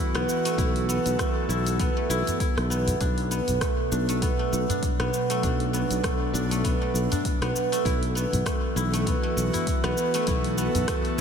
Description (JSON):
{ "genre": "organic downtempo", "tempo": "99 BPM", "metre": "4/4", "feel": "swing 56% on 16ths", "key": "unclear", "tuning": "A4 = 440 Hz", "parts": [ { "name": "airy breathy pad", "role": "sustained chords", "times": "0.0-11.2 s", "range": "B2 to A4", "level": "-31 LUFS", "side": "right 1 dB", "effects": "chorus, sidechain pumping" }, { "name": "guzheng", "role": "arpeggios", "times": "0.0-11.2 s", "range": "A3 to E4", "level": "-27 LUFS", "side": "right 1 dB", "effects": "diffuse ambient delay" }, { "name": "sustaining fretless electric bass", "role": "bass", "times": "0.1-11.2 s", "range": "B1", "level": "-28 LUFS", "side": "equal", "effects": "sidechain pumping" }, { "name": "deep house drum kit", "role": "drums", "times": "0.2-11.2 s", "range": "cabasa, hi-hat, rim click", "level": "-34 LUFS", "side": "equal", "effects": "studio reverb" }, { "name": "electronic kick drum", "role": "drums", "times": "0.6-11.0 s", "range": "none", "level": "-28 LUFS", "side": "equal", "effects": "studio reverb" }, { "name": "udu", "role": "percussion", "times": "2.3-10.9 s", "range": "none", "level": "-33 LUFS", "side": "left 1 dB", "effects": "none" } ], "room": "moderate lush hall reverb, RT60 2.2 s", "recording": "dreamy mix soaked in reverb", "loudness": "-23 LUFS", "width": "side -7 dB against mid", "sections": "0.0-11.2 A section", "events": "none", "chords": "0.0 Esus4/B", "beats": "| 0.58 1.19 1.79 2.40 | 3.01 3.61 4.22 4.83 | 5.43 6.04 6.64 7.25 | 7.86 8.46 9.07 9.67 | 10.28 10.89" }